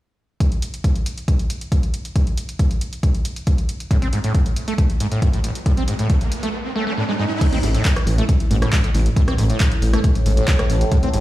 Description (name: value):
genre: driving peak-time techno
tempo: 137 BPM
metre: 4/4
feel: straight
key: A harmonic minor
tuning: A4 = 439 Hz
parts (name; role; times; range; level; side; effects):
- electronic kick drum; drums; 0.4-11.0 s; none; -18 LUFS; equal; overdrive
- punchy analog drum machine; drums; 0.4-11.2 s; crash cymbal, handclaps, hi-hat, rim click; -29 LUFS; equal; overdrive, sidechain pumping on hats, sidechain pumping on cymbals
- screaming distorted acid line; riff; 3.9-11.2 s; A1 to C4; -23 LUFS; equal; distortion, wide subtle chorus, sidechain pumping, digital delay
- riser; sound effects; 5.3-7.4 s; none; -29 LUFS; right 2 dB; none
- overtone-sweeping drone; drone; 8.2-11.2 s; A2; -27 LUFS; equal; chorus, built-in reverb, phaser, sidechain pumping
- detuned saw bass; bass; 7.5-11.2 s; A1; -18 LUFS; equal; sidechain pumping
room: little or no reverb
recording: played on a big sound system in a bare room, large studio reverb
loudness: -17 LUFS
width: side -16 dB against mid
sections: 0.4-7.4 A section; 7.4-11.2 B section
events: riser 5.3-7.4; break 6.5-7.4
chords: none